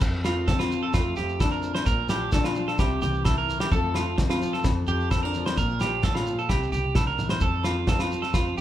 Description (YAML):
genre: highlife guitar band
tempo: 130 BPM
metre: 4/4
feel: straight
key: F major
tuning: A4 = 441 Hz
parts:
  - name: nylon-string guitar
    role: accompaniment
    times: 0.0-8.6 s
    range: F2 to A4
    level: -31 LUFS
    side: left 4 dB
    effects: none
  - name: electric guitar at the edge of break-up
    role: arpeggios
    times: 0.0-8.6 s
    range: F4 to C5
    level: -28 LUFS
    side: right 4 dB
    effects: none
  - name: fingered electric bass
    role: bass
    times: 0.0-8.6 s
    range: Bb1 to F2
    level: -30 LUFS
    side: equal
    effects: none
  - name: cloth-damped thuddy drum kit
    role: drums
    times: 0.0-8.5 s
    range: crash cymbal, kick drum, snare drum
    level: -26 LUFS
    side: equal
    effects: none
  - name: congas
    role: percussion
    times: 0.0-8.5 s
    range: none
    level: -35 LUFS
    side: right 1 dB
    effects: none
  - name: shekere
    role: percussion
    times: 0.0-8.6 s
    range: none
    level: -37 LUFS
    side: right 1 dB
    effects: none
  - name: agogo bells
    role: percussion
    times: 0.2-8.5 s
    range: none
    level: -38 LUFS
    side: left 8 dB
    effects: none
room: moderate large studio reverb, RT60 0.9 s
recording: band playing live in one room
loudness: -22 LUFS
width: side -12 dB against mid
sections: 0.0-8.6 A section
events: drum fill 6.8-7.4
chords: 0.0 F; 0.9 Dm/F; 1.9 Bb; 2.8 C; 3.7 F; 4.6 Dm/F; 5.6 Bb5; 6.5 C; 7.4 F